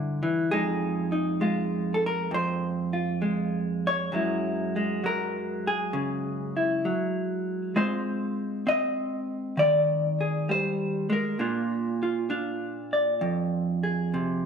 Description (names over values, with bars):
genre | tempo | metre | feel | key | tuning
solo jazz | 66 BPM | 4/4 | swing 68% on 8ths | unclear | A4 = 439 Hz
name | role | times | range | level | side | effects
vintage hollow-body jazz guitar | solo | 0.0-14.5 s | F2 to Eb5 | -25 LUFS | equal | none
room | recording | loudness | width
wet large studio reverb, RT60 1.3 s | none | -25 LUFS | side -6 dB against mid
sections
0.0-14.5 A section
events
none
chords
0.5 Fm7; 4.1 Gbsus2; 7.8 Ab6; 11.4 Bb7